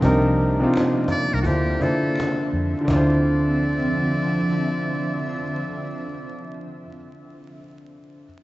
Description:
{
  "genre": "lo-fi hip hop",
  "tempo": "84 BPM",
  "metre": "4/4",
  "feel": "swing 65% on 16ths",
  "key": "D minor",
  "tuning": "A4 = 435 Hz",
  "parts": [
    { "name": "felt-muted upright piano", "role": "accompaniment", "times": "0.0-8.3 s", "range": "C3 to C5", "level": "-22 LUFS", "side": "equal", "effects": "cassette tape" },
    { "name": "granular cloud pad", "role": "sustained chords", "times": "0.0-6.5 s", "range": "C3 to E5", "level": "-27 LUFS", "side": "equal", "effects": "built-in reverb" },
    { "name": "vintage muted fingered electric bass", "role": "bass", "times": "0.0-6.9 s", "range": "C2 to F2", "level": "-24 LUFS", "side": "equal", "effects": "none" },
    { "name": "cajon", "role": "drums", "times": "0.0-3.1 s", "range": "none", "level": "-29 LUFS", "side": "equal", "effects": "none" },
    { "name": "finger snap", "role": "percussion", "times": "0.7-3.2 s", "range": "none", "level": "-44 LUFS", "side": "equal", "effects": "none" },
    { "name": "trumpet with metal mute", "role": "melody", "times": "1.1-6.5 s", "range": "F#4 to D5", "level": "-30 LUFS", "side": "equal", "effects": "analog delay" }
  ],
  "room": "moderate lush hall reverb, RT60 2.6 s",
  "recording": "rough home demo mix, vinyl crackle, nothing above 7.9 kHz",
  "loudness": "-19 LUFS",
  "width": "side -17 dB against mid",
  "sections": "0.0-2.9 A section; 2.9-5.7 B section",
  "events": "none",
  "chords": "0.0 Cm9; 1.4 Dm9"
}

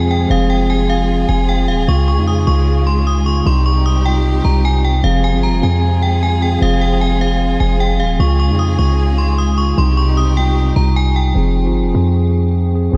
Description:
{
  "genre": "hip hop",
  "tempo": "152 BPM",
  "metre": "4/4",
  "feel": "half-time",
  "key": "F minor",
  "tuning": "A4 = 440 Hz",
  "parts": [
    { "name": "metallic FM bell", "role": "melody", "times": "0.0-11.3 s", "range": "F5 to Eb6", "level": "-24 LUFS", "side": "equal", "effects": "chorus, low-pass filter, diffuse ambient delay" },
    { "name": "mellow tine electric piano", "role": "accompaniment", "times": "0.0-13.0 s", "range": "C3 to Ab4", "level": "-21 LUFS", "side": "equal", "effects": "low-pass filter" },
    { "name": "warm symphonic string section", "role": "sustained chords", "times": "0.0-11.3 s", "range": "C3 to Ab4", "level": "-27 LUFS", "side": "equal", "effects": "none" },
    { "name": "warm 808-style bass", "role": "bass", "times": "0.0-13.0 s", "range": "Eb1 to F2", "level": "-17 LUFS", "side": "equal", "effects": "none" }
  ],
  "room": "light reverb",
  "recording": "none",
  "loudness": "-15 LUFS",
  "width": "mono",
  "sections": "0.0-11.4 A section; 11.4-13.0 B section",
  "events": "none",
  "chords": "0.0 Fm; 1.9 Db; 3.5 Cm; 5.0 Fm; 8.2 Db; 9.8 Cm; 11.4 Fm"
}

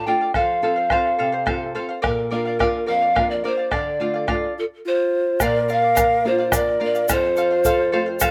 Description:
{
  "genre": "andean folk, Andean ensemble",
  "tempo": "71 BPM (dotted quarters)",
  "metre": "6/8",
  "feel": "straight",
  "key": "unclear",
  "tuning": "A4 = 441 Hz",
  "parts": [
    { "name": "mellow hollow pan flute", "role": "melody", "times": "0.0-8.3 s", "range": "A4 to G5", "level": "-22 LUFS", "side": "equal", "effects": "none" },
    { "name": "charango", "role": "accompaniment", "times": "0.0-8.3 s", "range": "A4 to F5", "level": "-28 LUFS", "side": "equal", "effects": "slapback echo" },
    { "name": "nylon-string guitar", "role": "accompaniment", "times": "0.0-8.3 s", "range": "F2 to A4", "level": "-31 LUFS", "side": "equal", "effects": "slapback echo" },
    { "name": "bombo", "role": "percussion", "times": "0.3-8.3 s", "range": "none", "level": "-27 LUFS", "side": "equal", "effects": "none" },
    { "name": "breathy large quena", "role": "second line", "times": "4.6-8.3 s", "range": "F4 to Bb4", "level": "-28 LUFS", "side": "equal", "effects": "slapback echo" },
    { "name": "egg shaker", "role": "percussion", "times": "5.4-8.3 s", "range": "none", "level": "-29 LUFS", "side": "equal", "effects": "none" }
  ],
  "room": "little or no reverb",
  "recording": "recorded outdoors, with no room sound",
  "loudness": "-20 LUFS",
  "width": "mono",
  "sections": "0.0-5.4 A section; 5.4-8.3 B section",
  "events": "none",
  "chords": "0.3 F; 2.0 Bb; 3.7 Dm; 5.4 Bb; 7.1 F"
}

